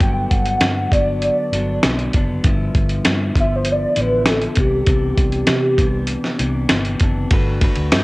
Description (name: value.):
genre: indie pop, bedroom pop.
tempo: 98 BPM.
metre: 4/4.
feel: straight.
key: G major.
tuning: A4 = 440 Hz.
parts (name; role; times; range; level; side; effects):
warbly nostalgic lead; melody; 0.0-8.0 s; G4 to G6; -20 LUFS; equal; ensemble chorus, cassette tape, analog delay.
clean electric guitar; accompaniment; 0.0-8.0 s; G2 to B4; -23 LUFS; left 1 dB; analog chorus, warbly pitch drift, cassette tape.
vintage muted fingered electric bass; bass; 0.0-8.0 s; F#1 to C3; -22 LUFS; equal; transformer saturation.
dusty soul sampler-style drum kit; drums; 0.0-8.0 s; hi-hat, kick drum, ride cymbal, snare drum; -17 LUFS; equal; vintage 12-bit sampler grit, cassette tape.
room: light reverb.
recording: home recording on cassette.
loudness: -15 LUFS.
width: side -22 dB against mid.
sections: 0.0-7.3 A section.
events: none.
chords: 0.0 Gmaj7; 2.4 G13; 4.6 Cmaj9; 7.3 Gmaj9.